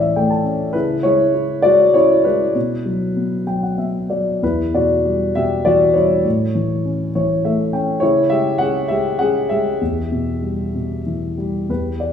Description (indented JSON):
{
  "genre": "classical, lyrical solo piano",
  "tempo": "93-104 BPM",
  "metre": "3/4",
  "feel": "rubato",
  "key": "E dorian",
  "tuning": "A4 = 439 Hz",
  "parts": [
    { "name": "dark concert grand piano", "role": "solo", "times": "0.0-12.1 s", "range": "E2 to A5", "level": "-15 LUFS", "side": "left 1 dB", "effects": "none" }
  ],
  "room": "wet recital hall reverb, RT60 1.3 s",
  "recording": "recorded in a church or concert hall, studio ambience",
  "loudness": "-15 LUFS",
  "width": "side -8 dB against mid",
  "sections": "0.0-11.7 A section",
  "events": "grand piano fill 0.0-0.7, 3.2-4.4, 6.8-8.0",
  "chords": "0.0 A; 0.7 C#m; 2.6 Bsus4; 4.4 Emadd9; 6.3 A; 8.0 C#m; 9.8 Em",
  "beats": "0.16 | 0.75 1.34 1.94 | 2.55 3.17 3.78 | 4.42 5.05 5.66 | 6.25 6.85 7.44 | 8.01 8.60 9.21 | 9.81 10.43 11.06 | 11.70"
}